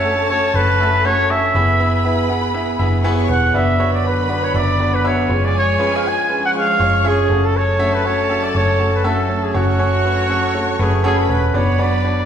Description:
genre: pop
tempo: 120 BPM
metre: 4/4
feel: straight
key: F# minor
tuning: A4 = 440 Hz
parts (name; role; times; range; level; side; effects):
- breathy trumpet; melody; 0.0-12.3 s; F#4 to G#5; -18 LUFS; right 1 dB; none
- warm symphonic violin section; second line; 0.0-12.3 s; G#4 to C#6; -24 LUFS; equal; none
- clear baby grand piano; accompaniment; 0.0-12.3 s; G#3 to F#5; -20 LUFS; right 1 dB; none
- vintage muted picked electric bass; bass; 0.0-12.3 s; E1 to F#1; -19 LUFS; equal; none
- chorused pulse-width pad; sustained chords; 3.5-12.3 s; D3 to D4; -29 LUFS; equal; none
room: wet recital hall reverb, RT60 1.2 s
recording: recorded in a church or concert hall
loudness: -14 LUFS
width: side -8 dB against mid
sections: 0.0-11.5 A section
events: none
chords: 0.0 F#m; 1.5 E/F#; 3.5 Bm/F#; 5.3 C#/F#; 7.3 F#m; 11.5 Bm/F#

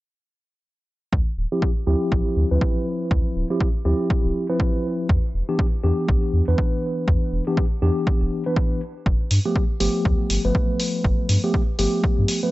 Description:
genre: deep house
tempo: 121 BPM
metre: 4/4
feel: swing 60% on 16ths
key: D dorian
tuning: A4 = 445 Hz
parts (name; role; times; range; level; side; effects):
- warm sub bass; bass; 1.1-12.2 s; D1 to G2; -21 LUFS; equal; tube saturation, sidechain pumping
- electronic kick drum; drums; 1.1-12.2 s; none; -21 LUFS; equal; none
- mellow tine electric piano; stabs; 1.5-12.5 s; E3 to B4; -24 LUFS; equal; slow stereo tremolo, sidechain pumping, low-pass filter, tape echo
- electronic hi-hat; drums; 9.3-12.4 s; none; -27 LUFS; left 1 dB; none
room: digital ambience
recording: dry, gritty hardware recording, nothing above 7.9 kHz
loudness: -19 LUFS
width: side -18 dB against mid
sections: 1.1-12.5 A section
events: filter sweep on sub bass 1.1-12.5; filter sweep on tine electric piano 1.1-12.5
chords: 1.1 Dm11; 5.1 Em7; 8.8 G9

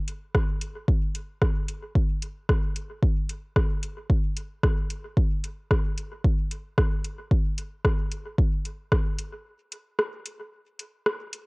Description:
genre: techno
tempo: 112 BPM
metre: 4/4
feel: swing 55% on 16ths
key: none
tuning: none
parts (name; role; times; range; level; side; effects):
- soft vintage rhythm box; drums; 0.1-11.4 s; hi-hat, rim click; -29 LUFS; equal; dub echo
- electronic kick drum; drums; 0.3-9.0 s; none; -23 LUFS; equal; none
room: little or no reverb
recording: home recording on cassette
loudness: -24 LUFS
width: side -32 dB against mid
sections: 0.0-11.5 A section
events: break 9.5-11.5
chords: none

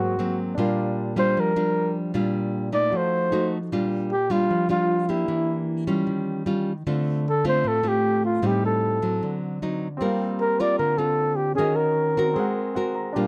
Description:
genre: bossa nova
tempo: 153 BPM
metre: 4/4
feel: straight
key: Bb major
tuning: A4 = 440 Hz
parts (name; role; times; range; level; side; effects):
- mellow flugelhorn; melody; 0.0-12.6 s; E4 to D5; -25 LUFS; equal; none
- nylon-string guitar; accompaniment; 0.0-13.3 s; Ab2 to Bb4; -27 LUFS; equal; none
- warm grand piano; accompaniment; 0.0-3.7, 10.0-13.3 s; Bb3 to Bb5; -33 LUFS; equal; none
room: little or no reverb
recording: dry, close 1970s-style studio recording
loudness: -24 LUFS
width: mono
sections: 0.0-3.7 A section; 3.7-13.3 B section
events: flugelhorn solo 0.0-3.7; grand piano fill 12.6-13.2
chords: 0.0 Ab9; 0.6 Bb6; 2.9 F7b9; 3.7 Bb6; 5.3 Em7b5; 6.1 Eb9; 6.9 Dm7; 8.4 Am7b5; 9.2 D7b9; 10.0 Gm11; 11.6 Ebm7; 12.4 Ab9

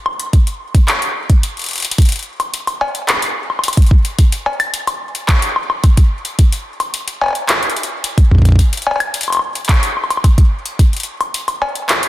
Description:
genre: IDM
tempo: 109 BPM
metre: 4/4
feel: straight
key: none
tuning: none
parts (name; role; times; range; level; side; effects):
- booming analog drum machine; drums; 0.1-12.1 s; cowbell, handclaps, hi-hat, woodblock; -17 LUFS; left 1 dB; digital delay
- electronic kick drum; drums; 0.3-10.9 s; none; -9 LUFS; equal; overdrive
room: little or no reverb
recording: dense, heavily limited modern master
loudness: -13 LUFS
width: side -15 dB against mid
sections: 0.0-2.0 A section; 2.0-12.1 B section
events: break 1.4-2.0; drum fill 1.7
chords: none

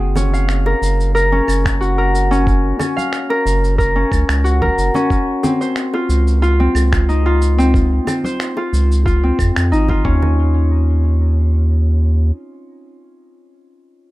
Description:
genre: organic downtempo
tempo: 91 BPM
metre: 4/4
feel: swing 53% on 16ths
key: unclear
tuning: A4 = 440 Hz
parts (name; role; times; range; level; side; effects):
- Celtic harp; arpeggios; 0.0-12.9 s; C4 to F5; -18 LUFS; left 1 dB; tape echo
- round analog bass; bass; 0.0-12.3 s; Gb1 to F2; -14 LUFS; equal; none
- electronic shaker, finger snaps and claves; drums; 0.2-9.9 s; none; -25 LUFS; right 1 dB; none
- congas and bongos; percussion; 0.2-10.3 s; none; -26 LUFS; right 1 dB; none
- electronic kick drum; drums; 1.7-10.2 s; none; -19 LUFS; equal; none
room: light reverb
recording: rough home demo mix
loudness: -13 LUFS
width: side -18 dB against mid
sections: 0.0-10.4 A section; 10.4-13.0 B section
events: none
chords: 0.0 Gbmaj7; 5.1 Dbmaj9; 10.0 Dbsus2/Eb

